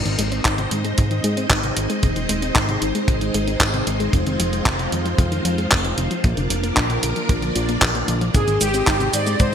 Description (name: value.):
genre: italo disco.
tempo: 114 BPM.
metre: 4/4.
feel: straight.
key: unclear.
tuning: A4 = 440 Hz.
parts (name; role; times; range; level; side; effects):
string machine, full ensemble; sustained chords; 0.0-9.5 s; F3 to Eb5; -24 LUFS; equal; ensemble chorus.
soft round pluck; arpeggios; 0.0-9.5 s; Bb2 to Eb4; -27 LUFS; left 2 dB; chorus, ping-pong delay.
fat analog bass; bass; 0.0-9.5 s; Eb1 to Ab2; -24 LUFS; equal; none.
clean 12-bit digital drum machine; drums; 0.1-9.5 s; cabasa, handclaps, hi-hat; -22 LUFS; equal; none.
kick drum; drums; 0.5-9.5 s; none; -19 LUFS; equal; none.
analog synth brass; melody; 8.3-9.5 s; G4 to D5; -20 LUFS; equal; chorus, ping-pong delay.
room: moderate plate reverb, RT60 1.9 s, digital ambience.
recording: bright 1980s-style digital production.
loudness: -17 LUFS.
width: side -8 dB against mid.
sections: 0.0-9.5 A section.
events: none.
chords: 0.0 Ab; 4.1 Fm7; 6.2 Bb; 8.3 Ab.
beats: 0.45 0.98 1.50 | 2.03 2.56 3.08 3.61 | 4.13 4.66 5.19 5.71 | 6.24 6.77 7.29 7.82 | 8.35 8.87 9.40.